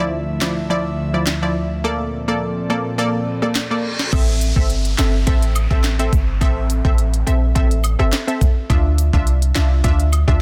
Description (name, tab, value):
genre	dancehall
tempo	105 BPM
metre	4/4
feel	straight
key	unclear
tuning	A4 = 440 Hz
part	analog pluck	accompaniment	0.0-10.4 s	F3 to E5	-25 LUFS	equal	chorus
part	airy breathy pad	sustained chords	0.0-4.1 s	D2 to E5	-27 LUFS	equal	chorus
part	afro-pop drum kit	drums	0.4-10.4 s	crash cymbal, handclaps, hi-hat, kick drum, rim click, snare drum	-21 LUFS	equal	none
part	reverse cymbal and downlifter	sound effects	3.3-8.7 s	none	-33 LUFS	equal	none
part	clean 808-style bass	bass	4.1-10.4 s	G1 to D2	-19 LUFS	equal	none
part	woodblock and cabasa	percussion	4.1-10.3 s	none	-32 LUFS	equal	none
room	digital ambience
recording	dense, heavily limited modern master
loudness	-18 LUFS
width	mono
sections	0.0-4.1 A section; 4.1-10.4 B section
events	reverse cymbal 3.3-4.1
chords	0.0 Dmadd9; 1.8 Bbmaj7; 4.1 Am; 8.7 Dmadd9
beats	0.13 0.70 1.27 | 1.84 2.41 2.98 3.56 | 4.13 4.70 5.27 5.84 | 6.41 6.99 7.56 8.13 | 8.70 9.27 9.84 10.41